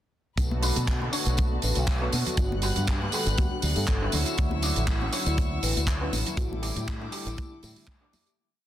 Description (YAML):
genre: nu-disco, nu disco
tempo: 120 BPM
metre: 4/4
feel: swing 54% on 16ths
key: B minor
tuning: A4 = 440 Hz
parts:
  - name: warm analog pad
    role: accompaniment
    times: 0.4-7.9 s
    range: D3 to F#5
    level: -35 LUFS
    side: left 1 dB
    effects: wide subtle chorus, sidechain pumping, slapback echo
  - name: rich chamber string section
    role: sustained chords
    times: 0.4-8.4 s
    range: A4 to F#6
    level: -39 LUFS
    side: left 4 dB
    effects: sidechain pumping
  - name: soft round pluck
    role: arpeggios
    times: 0.4-8.3 s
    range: A3 to G4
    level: -40 LUFS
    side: left 3 dB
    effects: lush chorus, sidechain pumping, tape echo
  - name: fingered electric bass with an envelope filter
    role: bass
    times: 0.4-7.7 s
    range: G1 to B2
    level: -28 LUFS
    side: equal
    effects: none
  - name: kick drum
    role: drums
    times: 0.4-8.0 s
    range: none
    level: -28 LUFS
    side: equal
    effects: none
  - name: tight funk drum kit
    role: drums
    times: 0.4-8.4 s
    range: handclaps, hi-hat, tambourine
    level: -31 LUFS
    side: right 2 dB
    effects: soft clipping on snare
  - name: congas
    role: percussion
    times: 0.5-8.2 s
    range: none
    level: -39 LUFS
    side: left 3 dB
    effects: none
  - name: electric guitar with an envelope filter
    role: riff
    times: 0.6-8.3 s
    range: D4 to D5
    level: -37 LUFS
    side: right 1 dB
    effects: wide subtle chorus, low-pass filter, slapback echo
  - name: soft octave-layered synth lead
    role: melody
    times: 1.6-7.8 s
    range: E4 to B4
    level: -38 LUFS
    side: left 1 dB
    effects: chorus, tremolo, cassette tape, tape echo
room: light reverb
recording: dense, heavily limited modern master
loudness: -24 LUFS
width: side -12 dB against mid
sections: 0.4-8.4 groove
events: filter sweep on clean electric guitar 0.4-8.4; fade-out 5.7-8.4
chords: 0.4 Bm7; 2.4 Gmaj7; 4.1 Dmaj9; 6.4 A7sus4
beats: | 0.38 0.88 1.38 1.88 | 2.38 2.88 3.38 3.88 | 4.38 4.88 5.38 5.88 | 6.38 6.88 7.38 7.88